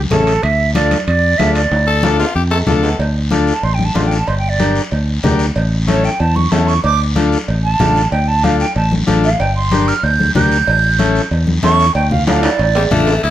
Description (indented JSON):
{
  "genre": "latin, cumbia",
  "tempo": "187 BPM",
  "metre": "4/4",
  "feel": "straight",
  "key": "D harmonic minor",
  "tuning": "A4 = 440 Hz",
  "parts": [
    { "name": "fingered electric bass", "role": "bass", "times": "0.0-13.3 s", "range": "G1 to F2", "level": "-16 LUFS", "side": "equal", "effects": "none" },
    { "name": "breathy silver concert flute", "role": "melody", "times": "0.1-13.0 s", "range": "A4 to G6", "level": "-17 LUFS", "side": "right 4 dB", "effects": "none" },
    { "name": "combo organ", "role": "accompaniment", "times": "0.1-13.1 s", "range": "C#4 to Bb4", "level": "-18 LUFS", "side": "left 4 dB", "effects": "none" },
    { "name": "congas", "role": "percussion", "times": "0.1-13.3 s", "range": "none", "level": "-20 LUFS", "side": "left 2 dB", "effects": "none" },
    { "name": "guiro", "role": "percussion", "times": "0.1-13.3 s", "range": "none", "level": "-27 LUFS", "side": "left 3 dB", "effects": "none" },
    { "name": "timbales and cowbell", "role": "percussion", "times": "0.1-13.3 s", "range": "none", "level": "-24 LUFS", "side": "right 3 dB", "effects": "none" },
    { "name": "raspy tenor saxophone", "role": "second line", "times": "1.9-3.0, 12.8-13.3 s", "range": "G3 to A4", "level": "-18 LUFS", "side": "left 4 dB", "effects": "none" }
  ],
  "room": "moderate studio reverb, RT60 0.6 s",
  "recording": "none",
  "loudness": "-12 LUFS",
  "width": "side -12 dB against mid",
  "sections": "0.0-3.0 A section; 3.0-13.2 B section",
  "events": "drum fill 1.7-3.0, 12.3-13.2; flute solo 3.0-13.2",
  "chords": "0.4 Dm; 4.3 Gm; 5.6 A; 6.8 Dm; 9.4 Gm; 10.7 A7; 12.0 Dm",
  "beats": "0.11 | 0.43 0.75 1.07 1.39 | 1.71 2.03 2.35 2.67 | 3.00 3.31 3.64 3.96 | 4.28 4.60 4.92 5.24 | 5.56 5.88 6.20 6.52 | 6.84 7.16 7.48 7.80 | 8.12 8.44 8.76 9.08 | 9.40 9.72 10.04 10.36 | 10.68 11.00 11.32 11.64 | 11.96 12.28 12.59 12.91 | 13.23"
}